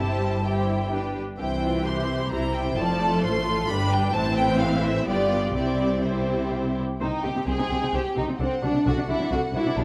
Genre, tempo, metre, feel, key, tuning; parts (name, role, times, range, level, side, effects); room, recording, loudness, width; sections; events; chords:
quick classical-period movement for string orchestra; 130 BPM; 3/4; straight; C major; A4 = 439 Hz
clear studio violin section; melody; 0.0-9.8 s; C5 to C6; -32 LUFS; equal
rich studio violin section; second line; 0.0-9.8 s; C4 to D5; -31 LUFS; equal
clear studio viola section; accompaniment; 0.0-9.8 s; E3 to C5; -31 LUFS; equal
rich studio cello section; bass; 0.0-9.8 s; F2 to C3; -33 LUFS; equal
rich studio double bass section; bass; 0.0-9.8 s; F1 to C2; -31 LUFS; equal
wet recital hall reverb, RT60 1.3 s; dark, warm production; -25 LUFS; mono
0.0-7.0 A section; 7.0-9.8 B section
0.0 C/G; 0.9 G; 1.4 C; 2.8 F; 3.7 G; 4.2 Am; 5.1 G7; 5.6 C; 7.0 Cm; 8.4 D7/C